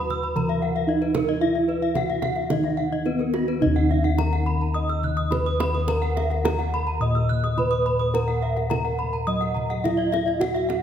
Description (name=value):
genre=Balinese gamelan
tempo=106 BPM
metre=4/4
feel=straight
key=Eb pelog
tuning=A4 = 439 Hz
part: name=gamelan-type bronze metallophone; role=melody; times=0.0-10.8 s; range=Cb4 to Eb5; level=-26 LUFS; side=right 3 dB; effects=tape echo
part: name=gamelan-type bronze metallophone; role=arpeggios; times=0.0-10.5 s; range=Bb4 to Eb6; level=-29 LUFS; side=left 5 dB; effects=none
part: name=gamelan-type bossed gongs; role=bass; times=0.0-10.8 s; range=Eb2 to Bb4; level=-25 LUFS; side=left 2 dB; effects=none
part: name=gamelan-type bronze metallophone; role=arpeggios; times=0.1-10.8 s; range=Gb4 to Gb6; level=-32 LUFS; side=right 4 dB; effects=none
part: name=kendang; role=percussion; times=0.1-10.8 s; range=none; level=-32 LUFS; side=right 4 dB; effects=none
room=moderate concert hall reverb, RT60 1.9 s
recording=none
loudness=-21 LUFS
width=side -9 dB against mid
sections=0.0-3.6 A section; 3.6-10.8 B section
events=none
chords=none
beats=0.36 0.88 | 1.41 1.95 2.50 3.05 | 3.61 4.18 4.75 5.31 | 5.88 6.44 7.01 7.58 | 8.14 8.71 9.27 9.84 | 10.40